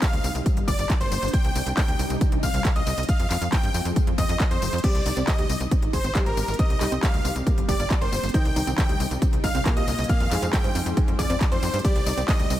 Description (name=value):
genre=uplifting trance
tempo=137 BPM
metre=4/4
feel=straight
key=C minor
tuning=A4 = 441 Hz
part: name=supersaw chords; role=melody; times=0.0-12.5 s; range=Bb4 to G5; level=-30 LUFS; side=equal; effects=sidechain pumping, digital delay
part: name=warm grand piano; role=second line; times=0.0-12.5 s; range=Bb5 to G6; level=-37 LUFS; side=left 1 dB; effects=sidechain pumping, digital delay
part: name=analog string pad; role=sustained chords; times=0.0-12.6 s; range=C3 to D5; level=-33 LUFS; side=equal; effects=ensemble chorus, phaser, sidechain pumping
part: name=electronic kick drum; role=drums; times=0.0-12.4 s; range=none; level=-22 LUFS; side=equal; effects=overdrive
part: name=techno drum kit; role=drums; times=0.0-12.6 s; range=crash cymbal, handclaps, hi-hat, ride cymbal, tambourine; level=-31 LUFS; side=left 1 dB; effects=overdrive
part: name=tight sequencer bass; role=bass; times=0.1-12.6 s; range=F1 to G2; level=-28 LUFS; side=equal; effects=sidechain pumping
part: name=felt-muted upright piano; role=second line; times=4.8-12.4 s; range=Ab2 to G4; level=-33 LUFS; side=equal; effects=digital delay
part: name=tight sequenced synth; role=arpeggios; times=4.8-12.5 s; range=Bb3 to C5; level=-34 LUFS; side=right 3 dB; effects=chorus, phaser, sidechain pumping, digital delay
room=digital ambience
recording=none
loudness=-20 LUFS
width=side -13 dB against mid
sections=0.0-12.6 A section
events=none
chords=0.5 Gm; 1.3 Cmadd9; 3.1 Fm; 4.8 Cmadd9; 5.7 Ab; 6.6 Cmadd9; 7.5 Gm; 8.3 Cmadd9; 10.1 Fm; 11.8 Cmadd9